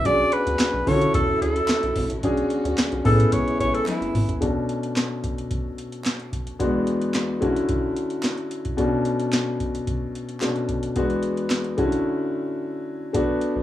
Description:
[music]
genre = early-eighties boogie funk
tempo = 110 BPM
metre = 4/4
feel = straight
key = B dorian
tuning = A4 = 440 Hz
[part]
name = breathy alto saxophone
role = melody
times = 0.0-4.4 s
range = E4 to D5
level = -23 LUFS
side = equal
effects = slapback echo
[part]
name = clear grand piano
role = accompaniment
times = 0.0-13.6 s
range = E2 to A4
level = -24 LUFS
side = left 2 dB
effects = none
[part]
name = warm studio string section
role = sustained chords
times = 0.0-4.4, 13.1-13.6 s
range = D3 to F#4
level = -35 LUFS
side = right 1 dB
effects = none
[part]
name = rubbery square bass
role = bass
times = 0.1-4.4, 13.1-13.6 s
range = F#1 to D3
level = -26 LUFS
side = equal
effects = none
[part]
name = booming analog drum machine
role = drums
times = 0.1-13.6 s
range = handclaps, hi-hat, kick drum, snare drum, toms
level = -26 LUFS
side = equal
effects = none
[part]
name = group handclap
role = percussion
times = 0.6-11.6 s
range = none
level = -37 LUFS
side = right 3 dB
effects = none
[sound]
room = light reverb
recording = rough home demo mix, small room ambience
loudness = -21 LUFS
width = side -13 dB against mid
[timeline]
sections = 0.0-4.4 A section; 4.4-13.1 B section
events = alto saxophone solo 0.0-4.4; drum fill 3.9-4.4; break 12.1-13.1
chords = 0.1 Bm69; 0.9 Dmaj9; 2.2 Bm69; 3.1 Amaj7; 4.4 Bm9; 6.6 E9; 7.4 Dmaj9; 8.8 Bm9; 11.0 E9; 11.8 Dmaj9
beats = | 0.05 0.60 1.14 1.69 | 2.23 2.78 3.33 3.87 | 4.42 4.96 5.51 6.05 | 6.60 7.14 7.69 8.23 | 8.78 9.33 9.87 10.42 | 10.96 11.51 12.05 12.60 | 13.14

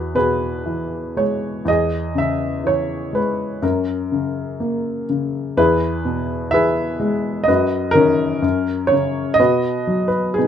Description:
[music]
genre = classical, lyrical solo piano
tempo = 62 BPM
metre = 4/4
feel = rubato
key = unclear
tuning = A4 = 440 Hz
[part]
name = dark baby grand piano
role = solo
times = 0.0-10.5 s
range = E2 to E5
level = -17 LUFS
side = left 1 dB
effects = none
[sound]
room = moderate studio ambience, RT60 0.5 s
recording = none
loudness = -17 LUFS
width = side -9 dB against mid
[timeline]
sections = 0.0-10.5 A section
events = none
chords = 0.0 Eadd9; 1.7 C#m/E; 3.6 F#; 5.6 E; 7.5 B/F#; 8.4 F#; 9.4 B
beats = 0.67 | 1.68 2.65 3.63 4.61 | 5.57 6.53 7.48 8.43 | 9.39 10.38

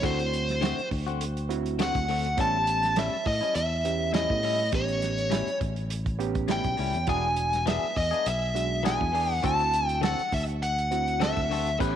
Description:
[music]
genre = straight-eighth soul blues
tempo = 102 BPM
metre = 4/4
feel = swing 53% on 16ths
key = A mixolydian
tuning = A4 = 439 Hz
[part]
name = biting lead guitar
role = melody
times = 0.0-11.8 s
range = C5 to A5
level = -27 LUFS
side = equal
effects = overdrive
[part]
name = overdriven reed electric piano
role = accompaniment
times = 0.0-12.0 s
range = G#3 to G4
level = -34 LUFS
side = right 10 dB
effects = none
[part]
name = direct-recorded clean electric guitar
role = stabs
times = 0.0-12.0 s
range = A2 to B4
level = -34 LUFS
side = left 10 dB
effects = none
[part]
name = fingered electric bass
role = bass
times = 0.0-12.0 s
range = E1 to A2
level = -30 LUFS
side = equal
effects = none
[part]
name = warm soul drum kit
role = drums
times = 0.0-11.9 s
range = crash cymbal, hi-hat, kick drum, snare drum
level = -32 LUFS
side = right 3 dB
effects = none
[sound]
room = moderate echo chamber reverb, RT60 2.3 s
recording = 1960s-style stereo with parts hard left and right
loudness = -24 LUFS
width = side -9 dB against mid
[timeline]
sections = 0.0-12.0 A section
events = none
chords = 0.0 D7; 2.4 A7; 7.1 E7; 9.4 D7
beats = | 0.03 0.62 1.20 1.79 | 2.38 2.96 3.55 4.14 | 4.73 5.32 5.91 6.49 | 7.08 7.67 8.26 8.85 | 9.44 10.03 10.62 11.21 | 11.80

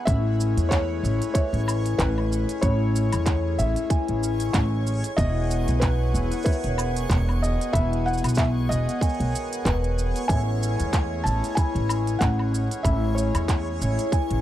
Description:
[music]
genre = folktronica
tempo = 94 BPM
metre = 4/4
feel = swing 56% on 16ths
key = unclear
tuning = A4 = 437 Hz
[part]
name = accordion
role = sustained chords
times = 0.0-14.4 s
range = G#3 to G#4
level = -38 LUFS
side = right 3 dB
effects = none
[part]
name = cimbalom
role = arpeggios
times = 0.0-14.4 s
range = E2 to F#4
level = -30 LUFS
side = left 6 dB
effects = vintage 12-bit sampler grit, tape echo
[part]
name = backwards swelling texture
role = texture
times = 0.0-14.4 s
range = C#5 to C#6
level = -37 LUFS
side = right 4 dB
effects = built-in reverb
[part]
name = felt-muted upright piano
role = melody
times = 0.1-14.1 s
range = B4 to A5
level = -31 LUFS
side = right 1 dB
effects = tape echo
[part]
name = music box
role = second line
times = 0.1-14.4 s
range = B4 to B5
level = -38 LUFS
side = equal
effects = tape echo
[part]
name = upright bass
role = bass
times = 0.1-14.4 s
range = E1 to E2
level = -24 LUFS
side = equal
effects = tube saturation
[part]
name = electronic kick drum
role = drums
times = 0.1-14.3 s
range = none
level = -23 LUFS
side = equal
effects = none
[part]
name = organic electronic drum kit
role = drums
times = 0.1-14.4 s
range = handclaps, hi-hat, shaker, woodblock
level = -31 LUFS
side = equal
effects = none
[sound]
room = small room ambience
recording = dry, close 1970s-style studio recording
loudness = -21 LUFS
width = side -13 dB against mid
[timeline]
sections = 0.1-14.4 A section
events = none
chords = 0.1 Amaj7; 5.2 Emaj9; 10.3 Amaj7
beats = | 0.08 0.72 1.36 1.99 | 2.63 3.27 3.91 4.55 | 5.19 5.82 6.46 7.10 | 7.74 8.38 9.02 9.65 | 10.29 10.93 11.57 12.21 | 12.85 13.48 14.12

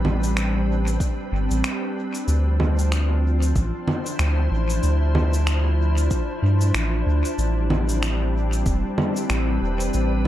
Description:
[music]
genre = ambient dub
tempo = 94 BPM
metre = 4/4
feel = swing 58% on 16ths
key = A minor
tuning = A4 = 440 Hz
[part]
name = soft additive organ-like pad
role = sustained chords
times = 0.0-10.3 s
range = F3 to C5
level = -26 LUFS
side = left 1 dB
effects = ensemble chorus, built-in reverb
[part]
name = soft dub sub bass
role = bass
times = 0.0-10.3 s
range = E1 to G2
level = -20 LUFS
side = equal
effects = tube saturation
[part]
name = electronic congas, shaker and finger snaps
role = drums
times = 0.0-10.3 s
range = none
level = -27 LUFS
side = right 1 dB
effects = dub echo
[part]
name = electronic kick drum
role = drums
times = 1.0-8.8 s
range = none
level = -24 LUFS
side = equal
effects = none
[sound]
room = little or no reverb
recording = echo-heavy mix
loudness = -19 LUFS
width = side -13 dB against mid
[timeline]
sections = 0.0-10.3 A section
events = none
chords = 0.0 Am11; 2.3 Dm9; 7.4 Am11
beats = 0.36 1.00 1.64 | 2.28 2.92 3.55 4.19 | 4.83 5.47 6.11 6.75 | 7.38 8.02 8.66 9.30 | 9.94

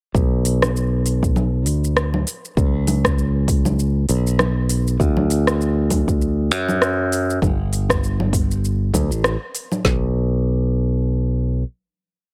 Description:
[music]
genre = sunset chillout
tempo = 99 BPM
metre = 4/4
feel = swing 57% on 16ths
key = B minor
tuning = A4 = 440 Hz
[part]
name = modern bright fingered electric bass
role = bass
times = 0.1-11.6 s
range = G1 to F#2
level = -21 LUFS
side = equal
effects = none
[part]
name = deep house drum kit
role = drums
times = 0.1-10.0 s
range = kick drum, snare drum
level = -23 LUFS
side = equal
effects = none
[part]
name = deep house drum kit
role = drums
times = 0.2-9.8 s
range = congas, hi-hat, rim click, shaker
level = -24 LUFS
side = equal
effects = none
[sound]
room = little or no reverb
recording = none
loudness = -20 LUFS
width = mono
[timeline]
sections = 0.1-9.8 groove; 9.8-12.3 final note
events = none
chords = none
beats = | 0.15 0.76 1.36 1.97 | 2.57 3.18 3.79 4.39 | 5.00 5.60 6.21 6.82 | 7.42 8.03 8.63 9.24 | 9.85 10.45 11.06

